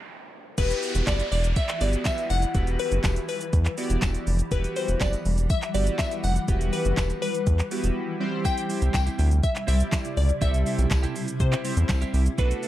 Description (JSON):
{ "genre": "dance-pop", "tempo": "122 BPM", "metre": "4/4", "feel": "straight", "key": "E minor", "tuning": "A4 = 441 Hz", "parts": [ { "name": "glassy wavetable pluck", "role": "melody", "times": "0.0-12.7 s", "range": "B4 to G5", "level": "-30 LUFS", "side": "left 3 dB", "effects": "chorus" }, { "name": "noise sweep and downlifter", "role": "sound effects", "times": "0.0-4.5 s", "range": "none", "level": "-37 LUFS", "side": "right 1 dB", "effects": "none" }, { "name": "chorused polysynth", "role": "accompaniment", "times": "0.6-12.7 s", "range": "G3 to D5", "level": "-32 LUFS", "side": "right 1 dB", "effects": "none" }, { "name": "granular cloud pad", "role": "sustained chords", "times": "1.4-12.7 s", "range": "C3 to F#5", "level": "-34 LUFS", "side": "equal", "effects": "built-in reverb, sidechain pumping" }, { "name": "round analog bass", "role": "bass", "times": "0.6-12.5 s", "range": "E1 to C3", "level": "-23 LUFS", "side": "equal", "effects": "sidechain pumping" }, { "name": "smooth R&B drum kit", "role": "drums", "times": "0.6-12.7 s", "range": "crash cymbal, handclaps, hi-hat, kick drum, shaker, snare drum", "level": "-28 LUFS", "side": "equal", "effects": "overdrive" }, { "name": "tambourine", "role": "percussion", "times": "1.1-12.0 s", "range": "none", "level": "-46 LUFS", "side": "left 4 dB", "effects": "none" }, { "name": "twelve-string electric guitar", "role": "riff", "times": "8.4-12.7 s", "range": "A3 to G4", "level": "-35 LUFS", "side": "right 7 dB", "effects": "wide subtle chorus" } ], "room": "little or no reverb", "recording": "dark, warm production", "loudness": "-22 LUFS", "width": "side -14 dB against mid", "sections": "0.6-12.7 A section", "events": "noise sweep 0.0-0.6; stop 0.0-0.6; break 8.0-8.4", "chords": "0.0 N.C.; 0.6 Emadd9; 8.2 C", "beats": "0.09 | 0.58 1.07 1.56 2.06 | 2.55 3.04 3.53 4.02 | 4.51 5.01 5.50 5.99 | 6.48 6.97 7.47 7.96 | 8.45 8.94 9.43 9.93 | 10.42 10.91 11.40 11.89 | 12.38" }